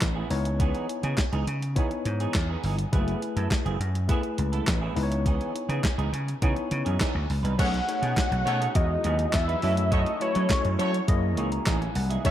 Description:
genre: early-eighties boogie funk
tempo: 103 BPM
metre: 4/4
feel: straight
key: F# dorian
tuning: A4 = 440 Hz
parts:
  - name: tine electric piano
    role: accompaniment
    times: 0.0-12.3 s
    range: G#3 to C#6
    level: -33 LUFS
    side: left 4 dB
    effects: medium stereo tremolo
  - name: semi-hollow electric guitar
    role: riff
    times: 0.0-12.3 s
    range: E3 to B4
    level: -34 LUFS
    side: right 7 dB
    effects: ensemble chorus
  - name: vintage slap bass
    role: bass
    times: 0.0-12.3 s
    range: F#1 to F#3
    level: -27 LUFS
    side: equal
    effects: none
  - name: clean 12-bit digital drum machine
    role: drums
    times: 0.0-12.3 s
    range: crash cymbal, handclaps, hi-hat, kick drum, snare drum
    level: -28 LUFS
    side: equal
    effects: none
  - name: fat analog lead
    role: melody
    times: 7.6-12.3 s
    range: C#5 to F#5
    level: -29 LUFS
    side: left 1 dB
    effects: chorus, ping-pong delay
  - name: warm horn section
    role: second line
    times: 7.6-12.3 s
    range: A3 to C#5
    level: -35 LUFS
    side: equal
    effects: none
  - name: lush unison pad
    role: sustained chords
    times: 7.6-12.3 s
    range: E3 to D#5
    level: -38 LUFS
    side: right 3 dB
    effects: none
room: moderate plate reverb, RT60 2.3 s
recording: dreamy mix soaked in reverb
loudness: -23 LUFS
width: side -11 dB against mid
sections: 0.0-7.6 A section; 7.6-12.3 B section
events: none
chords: 0.3 C#m9; 2.9 F#m11; 5.0 C#m9; 7.6 B13; 8.8 Emaj9; 9.6 F#m7; 11.1 F#13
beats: 0.02 | 0.60 1.18 1.76 2.35 | 2.93 3.51 4.09 4.68 | 5.26 5.84 6.42 7.01 | 7.59 8.17 8.75 9.34 | 9.92 10.50 11.08 11.67 | 12.25

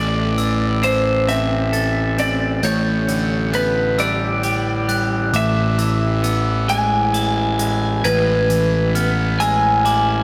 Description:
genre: post-rock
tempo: 44 BPM (dotted quarters)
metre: 6/8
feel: straight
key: unclear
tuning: A4 = 440 Hz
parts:
  - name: electric slide guitar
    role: melody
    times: 0.0-10.2 s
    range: B4 to G#5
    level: -23 LUFS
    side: equal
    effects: slapback echo, analog delay
  - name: clean electric guitar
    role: arpeggios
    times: 0.0-10.2 s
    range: A2 to A4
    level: -26 LUFS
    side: equal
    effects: spring reverb, slapback echo, analog delay
  - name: glockenspiel with hard plastic mallets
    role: arpeggios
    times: 0.0-10.2 s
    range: D6 to A7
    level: -28 LUFS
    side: equal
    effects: slapback echo, analog delay
  - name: fuzz picked electric bass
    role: bass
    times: 0.0-10.2 s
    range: A1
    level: -22 LUFS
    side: equal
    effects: overdrive
  - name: hi-hat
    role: drums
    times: 0.4-10.1 s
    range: none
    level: -36 LUFS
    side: equal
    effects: none
room: wet lush hall reverb, RT60 3.0 s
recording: big arena sound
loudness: -18 LUFS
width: mono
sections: 0.0-10.2 A section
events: none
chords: 0.0 Am; 2.6 G/A; 5.3 E/A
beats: 1.28 | 2.64 3.99 | 5.34 6.70 | 8.05 9.41

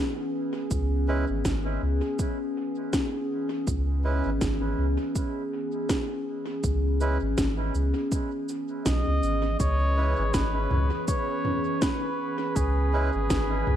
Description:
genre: ambient dub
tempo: 81 BPM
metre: 4/4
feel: swing 58% on 16ths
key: C# minor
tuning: A4 = 439 Hz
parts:
  - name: warbly tape-like pad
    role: sustained chords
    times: 0.0-13.8 s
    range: E3 to B4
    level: -30 LUFS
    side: left 1 dB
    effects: chorus, built-in reverb
  - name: soft dub sub bass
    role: bass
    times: 0.7-13.8 s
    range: G#1 to C#2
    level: -26 LUFS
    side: equal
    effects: none
  - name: electronic kick drum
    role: drums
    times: 0.7-13.5 s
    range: none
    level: -29 LUFS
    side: equal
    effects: none
  - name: organic electronic drum kit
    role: drums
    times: 0.7-13.8 s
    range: cabasa, snare drum, toms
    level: -31 LUFS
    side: equal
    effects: overdrive, dub echo
  - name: melodica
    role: stabs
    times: 1.1-13.1 s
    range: G#3 to B4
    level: -36 LUFS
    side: right 4 dB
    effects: dub echo
  - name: trumpet with cup mute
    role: melody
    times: 8.9-13.8 s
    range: G#4 to D#5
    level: -30 LUFS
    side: equal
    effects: dub echo
  - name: drifting glass-harmonics texture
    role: texture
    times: 9.8-13.8 s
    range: B4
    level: -37 LUFS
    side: left 1 dB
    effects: chorus, built-in reverb
room: light reverb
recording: echo-heavy mix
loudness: -24 LUFS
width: side -10 dB against mid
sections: 0.0-9.6 A section; 9.6-13.8 B section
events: none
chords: 0.0 C#m7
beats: | 0.71 1.45 2.19 2.93 | 3.67 4.41 5.15 5.89 | 6.63 7.38 8.12 8.86 | 9.60 10.34 11.08 11.82 | 12.56 13.30

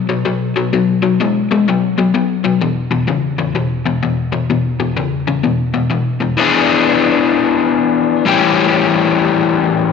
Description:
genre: rock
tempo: 127 BPM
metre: 4/4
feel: swing 64% on 8ths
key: unclear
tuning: A4 = 440 Hz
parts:
  - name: crunchy overdriven guitar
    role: solo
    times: 0.0-9.9 s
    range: E2 to G#4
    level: -13 LUFS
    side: left 5 dB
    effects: none
room: wet echo chamber reverb, RT60 2.0 s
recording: nothing above 7.9 kHz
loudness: -13 LUFS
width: side -6 dB against mid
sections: 0.0-6.4 A section; 6.4-9.9 B section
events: none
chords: 0.0 B5; 2.6 E5; 6.4 E7; 8.3 A7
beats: 0.26 | 0.73 1.20 1.68 2.15 | 2.62 3.09 3.56 4.03 | 4.50 4.97 5.45 5.92 | 6.39 6.86 7.33 7.80 | 8.27 8.74 9.21 9.68

